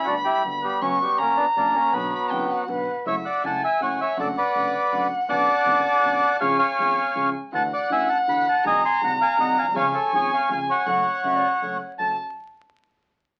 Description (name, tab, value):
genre	tango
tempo	161 BPM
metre	3/4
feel	rubato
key	B harmonic minor, F# minor from 3.1 s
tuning	A4 = 436 Hz
part	bandoneon	melody	0.0-12.2 s	F#3 to B#5	-24 LUFS	equal	none
part	dark violin	second line	0.0-12.2 s	E5 to C#6	-27 LUFS	equal	none
part	dark concert grand piano	accompaniment	0.1-12.2 s	F#1 to A4	-35 LUFS	equal	none
part	upright bass	bass	0.1-12.2 s	F#1 to D2	-46 LUFS	equal	none
part	breathy mellow silver concert flute	second line	2.3-3.1, 11.2-12.2 s	E4 to E5	-35 LUFS	equal	none
room	moderate club ambience, RT60 0.5 s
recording	very old 78 rpm record, vinyl crackle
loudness	-22 LUFS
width	mono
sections	0.0-3.1 A section; 3.1-12.0 B section; 12.0-13.1 C section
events	none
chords	0.0 Gmaj7; 0.8 F#sus4; 1.2 F#; 1.9 Bm; 3.1 F#m7; 4.2 D/F#; 5.3 Bmadd9; 6.4 C#; 7.5 Dadd9; 8.6 G#7/B#; 9.8 C#; 10.9 F#m